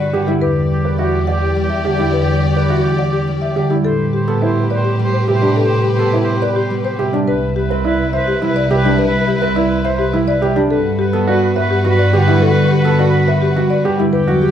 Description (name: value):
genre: classical, minimalist pattern music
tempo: 105 BPM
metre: 3/4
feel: straight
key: unclear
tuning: A4 = 440 Hz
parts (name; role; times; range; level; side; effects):
- buzzing marimba with medium hard mallets; melody; 0.0-14.5 s; G4 to F#5; -21 LUFS; left 4 dB; none
- clear oboe; second line; 0.0-14.5 s; G4 to C5; -25 LUFS; right 1 dB; none
- concert harp; accompaniment; 0.0-14.5 s; C3 to C4; -18 LUFS; equal; none
- rich studio violin section; sustained chords; 0.0-14.5 s; E4 to G5; -23 LUFS; left 3 dB; none
- warm studio double bass section; bass; 0.0-14.5 s; C2 to A2; -20 LUFS; right 1 dB; none
- clear baby grand piano; arpeggios; 0.1-14.5 s; D4 to D5; -19 LUFS; right 4 dB; none
room: wet large studio reverb, RT60 1.1 s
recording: heard from further back in the room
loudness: -13 LUFS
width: side -9 dB against mid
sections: 0.0-14.5 A section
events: none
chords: 0.4 Em7; 3.8 Am9; 7.3 Cmaj7; 10.7 Gmaj7